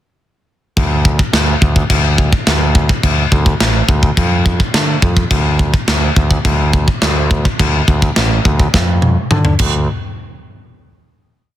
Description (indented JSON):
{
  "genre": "heavy metal",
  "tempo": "105 BPM",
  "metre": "4/4",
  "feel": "straight",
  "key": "D minor",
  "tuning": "A4 = 443 Hz",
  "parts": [
    { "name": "growling picked electric bass", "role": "bass", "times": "0.8-9.9 s", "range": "A1 to D3", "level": "-15 LUFS", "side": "equal", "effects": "overdrive" },
    { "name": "tight metal drum kit", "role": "drums", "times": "0.8-9.7 s", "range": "china cymbal, crash cymbal, kick drum, snare drum, toms", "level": "-13 LUFS", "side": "equal", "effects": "none" }
  ],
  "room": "little or no reverb",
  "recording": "dense, heavily limited modern master",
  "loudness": "-11 LUFS",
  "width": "side -12 dB against mid",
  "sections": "0.8-9.9 riff; 9.9-11.6 final hit",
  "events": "drum fill 8.7-9.9",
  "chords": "none",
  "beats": "| 0.77 1.34 1.90 2.47 | 3.04 3.60 4.17 4.74 | 5.31 5.88 6.45 7.03 | 7.60 8.17 8.74 9.32"
}